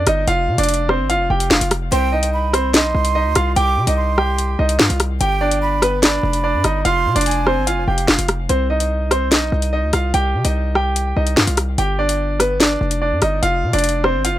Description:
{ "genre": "hip hop, drill", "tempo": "146 BPM", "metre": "4/4", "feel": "half-time", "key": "C harmonic minor", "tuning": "A4 = 440 Hz", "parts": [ { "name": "clear concert grand piano", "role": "melody", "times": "0.0-14.4 s", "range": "B3 to G5", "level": "-19 LUFS", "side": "right 1 dB", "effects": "ping-pong delay" }, { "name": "distorted 808-style bass", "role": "bass", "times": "0.0-14.4 s", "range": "F1 to C3", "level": "-20 LUFS", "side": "equal", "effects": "distortion" }, { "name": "drill drum kit", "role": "drums", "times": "0.1-14.3 s", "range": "handclaps, hi-hat, rim click, snare drum", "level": "-17 LUFS", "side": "left 1 dB", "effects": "none" }, { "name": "breathy jazz flute", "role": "second line", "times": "1.9-8.5 s", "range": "F5 to D6", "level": "-23 LUFS", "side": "right 5 dB", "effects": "ping-pong delay" } ], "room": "light reverb", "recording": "none", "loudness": "-15 LUFS", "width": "side -13 dB against mid", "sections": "0.0-8.5 A section; 8.5-14.4 A section", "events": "none", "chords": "0.3 F5; 1.9 Cm; 5.2 G; 6.8 Fm; 8.5 Cm; 11.8 G; 13.4 Fm", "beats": "| 0.28 0.69 1.10 1.51 | 1.92 2.33 2.74 3.15 | 3.56 3.97 4.38 4.79 | 5.21 5.62 6.03 6.44 | 6.85 7.26 7.67 8.08 | 8.49 8.90 9.32 9.73 | 10.14 10.55 10.96 11.37 | 11.78 12.19 12.60 13.02 | 13.43 13.84 14.25" }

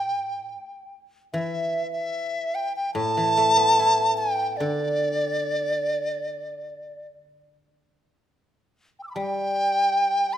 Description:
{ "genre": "chinese traditional", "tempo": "73 BPM", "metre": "4/4", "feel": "straight", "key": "D zhi mode", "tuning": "A4 = 442 Hz", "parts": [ { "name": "large dizi", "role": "melody", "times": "0.0-10.4 s", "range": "D5 to E6", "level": "-23 LUFS", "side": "equal", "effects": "none" }, { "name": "guzheng", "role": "accompaniment", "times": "0.0-10.4 s", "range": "A2 to E4", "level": "-29 LUFS", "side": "left 1 dB", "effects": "none" } ], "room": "moderate scoring stage reverb, RT60 1.8 s", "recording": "minimal, uncompressed stereo recording", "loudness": "-22 LUFS", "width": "side -10 dB against mid", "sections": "0.0-7.9 A section; 7.9-10.4 B section", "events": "none", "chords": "none", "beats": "0.54 | 1.35 2.16 2.97 3.79 | 4.61 5.43 6.25 7.09 | 7.93 8.76 9.59" }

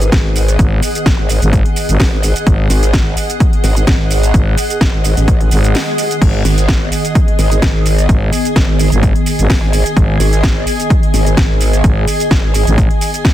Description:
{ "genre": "bass house", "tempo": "128 BPM", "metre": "4/4", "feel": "swing 54% on 16ths", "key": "G# minor", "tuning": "A4 = 441 Hz", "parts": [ { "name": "sweeping resonant pad", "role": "sustained chords", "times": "0.0-13.3 s", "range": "D#3 to D#5", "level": "-22 LUFS", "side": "right 2 dB", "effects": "chorus, sidechain pumping" }, { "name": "growl bass", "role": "bass", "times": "0.0-12.7 s", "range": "G#1 to A1", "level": "-14 LUFS", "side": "equal", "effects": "chorus, tube saturation, sidechain pumping" }, { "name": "house drum kit", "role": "drums", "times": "0.0-13.3 s", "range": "crash cymbal, hi-hat, shaker, snare drum", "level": "-20 LUFS", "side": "right 1 dB", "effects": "none" }, { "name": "granular cloud pad", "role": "texture", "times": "0.0-13.3 s", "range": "G#4 to G#5", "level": "-20 LUFS", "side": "right 1 dB", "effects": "built-in reverb, sidechain pumping" }, { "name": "electronic kick drum", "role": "drums", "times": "0.1-13.3 s", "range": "none", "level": "-13 LUFS", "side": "equal", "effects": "overdrive" }, { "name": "growling FM bass", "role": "bass", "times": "0.6-12.9 s", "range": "G#1 to A1", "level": "-13 LUFS", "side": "equal", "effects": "tube saturation, sidechain pumping" }, { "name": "swell", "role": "sound effects", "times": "5.5-6.2 s", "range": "none", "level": "-24 LUFS", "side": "left 2 dB", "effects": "none" } ], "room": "little or no reverb", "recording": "dense, heavily limited modern master", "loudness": "-10 LUFS", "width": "side -13 dB against mid", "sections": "0.0-13.3 A section", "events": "swell 5.5-6.2; break 5.7-6.2", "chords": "0.0 G#m", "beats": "0.12 | 0.59 1.06 1.53 2.00 | 2.47 2.93 3.40 3.87 | 4.34 4.81 5.28 5.75 | 6.22 6.68 7.15 7.62 | 8.09 8.56 9.03 9.50 | 9.97 10.43 10.90 11.37 | 11.84 12.31 12.78 13.25" }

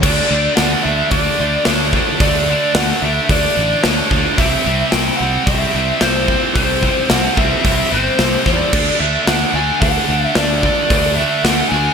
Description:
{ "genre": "hard rock", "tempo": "110 BPM", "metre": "4/4", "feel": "straight", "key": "unclear", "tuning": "A4 = 439 Hz", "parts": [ { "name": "smooth overdriven lead guitar", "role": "melody", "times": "0.0-11.9 s", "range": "C5 to G#5", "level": "-20 LUFS", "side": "equal", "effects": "none" }, { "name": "scooped high-gain guitar", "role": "riff", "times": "0.0-11.9 s", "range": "C3 to D4", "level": "-17 LUFS", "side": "right 1 dB", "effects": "distortion" }, { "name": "fuzz fingered electric bass", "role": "bass", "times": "0.0-11.9 s", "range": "G1 to E2", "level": "-21 LUFS", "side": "equal", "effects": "overdrive" }, { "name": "gated 80s drum kit", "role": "drums", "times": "0.0-11.6 s", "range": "crash cymbal, hi-hat, kick drum, snare drum", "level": "-18 LUFS", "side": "left 1 dB", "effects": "none" } ], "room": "moderate lush hall reverb, RT60 2.3 s", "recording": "bright 1980s-style digital production", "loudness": "-13 LUFS", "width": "side -6 dB against mid", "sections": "0.0-11.9 A section", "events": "none", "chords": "0.0 D5; 4.4 C; 8.7 D", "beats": "| 0.03 0.57 1.11 1.66 | 2.20 2.75 3.29 3.84 | 4.38 4.92 5.47 6.01 | 6.56 7.10 7.64 8.19 | 8.73 9.27 9.81 10.36 | 10.90 11.44" }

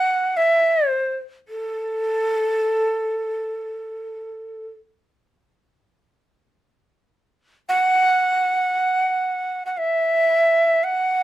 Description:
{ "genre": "japanese traditional, Japanese chamber music", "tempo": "free time", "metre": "none", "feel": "none", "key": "unclear", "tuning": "A4 = 441 Hz", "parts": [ { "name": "breathy bright shakuhachi", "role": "solo", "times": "0.0-11.2 s", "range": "A4 to F#5", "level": "-18 LUFS", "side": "right 1 dB", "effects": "none" } ], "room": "light reverb", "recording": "none", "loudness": "-18 LUFS", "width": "side -14 dB against mid", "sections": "0.0-6.1 A section; 6.1-11.2 A section", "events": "none", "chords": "none", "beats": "free time" }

